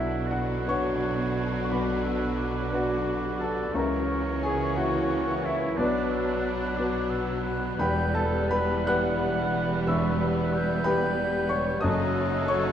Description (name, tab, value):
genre	classical, romantic movement for piano and orchestra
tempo	50-62 BPM (dotted quarters)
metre	12/8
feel	rubato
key	B minor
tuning	A4 = 440 Hz
part	clear grand piano	melody	0.0-12.7 s	E1 to F#6	-28 LUFS	left 2 dB	none
part	warm symphonic violin section	melody	0.0-12.7 s	B3 to F#4	-38 LUFS	left 6 dB	none
part	mellow clarinet	second line	0.0-12.7 s	F#4 to B4	-39 LUFS	left 2 dB	none
part	warm oboe	second line	0.0-12.7 s	D4 to F#5	-37 LUFS	right 2 dB	none
part	warm symphonic violin section	second line	0.0-12.7 s	A3 to D4	-39 LUFS	left 1 dB	none
part	bright symphonic viola section	accompaniment	0.0-12.7 s	E3 to G3	-36 LUFS	right 2 dB	none
part	warm bassoon	accompaniment	0.0-12.7 s	D3 to G3	-34 LUFS	equal	none
part	mellow French horn section	sustained chords	0.0-12.7 s	E3 to F#4	-36 LUFS	left 3 dB	none
part	clear trumpet	stabs	0.0-12.7 s	A4 to C#5	-37 LUFS	right 2 dB	none
part	clear studio cello section	bass	0.0-12.7 s	E2 to C#3	-34 LUFS	right 4 dB	none
part	rich symphonic double bass section	bass	0.0-12.7 s	E1 to C#2	-36 LUFS	right 3 dB	none
part	silver concert flute	second line	1.7-12.7 s	B5 to G6	-37 LUFS	left 1 dB	none
room	moderate scoring stage reverb, RT60 1.8 s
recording	dark, warm production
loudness	-24 LUFS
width	side -9 dB against mid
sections	0.0-12.7 A section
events	none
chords	0.0 Bm; 3.7 A#dim/C#; 5.8 Bm; 7.8 Em; 11.8 D#dim/F#